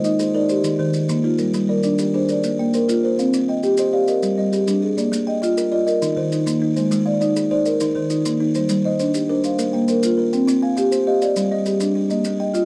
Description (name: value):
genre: southern african traditional, mbira-style interlocking cycle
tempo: 134 BPM (dotted quarters)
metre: 12/8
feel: straight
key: Bb mixolydian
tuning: A4 = 440 Hz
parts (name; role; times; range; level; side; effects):
- buzzing kalimba; arpeggios; 0.0-12.7 s; Eb3 to Ab5; -26 LUFS; equal; none
- marimba with soft mallets; arpeggios; 0.0-12.7 s; Eb3 to F5; -21 LUFS; equal; none
- maracas; percussion; 0.0-12.7 s; none; -35 LUFS; equal; none
room: light reverb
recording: dry, close 1970s-style studio recording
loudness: -19 LUFS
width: mono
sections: 0.0-5.0 A section; 5.0-12.7 B section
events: none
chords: 0.5 Eb; 1.4 Gm; 2.3 Bb; 3.2 Cm; 4.1 Gm; 5.0 Bb; 5.9 Eb5; 6.8 Ab; 7.7 Eb5; 8.5 Gm; 9.4 Bb5; 10.3 Cm; 11.2 G5; 12.1 Bb5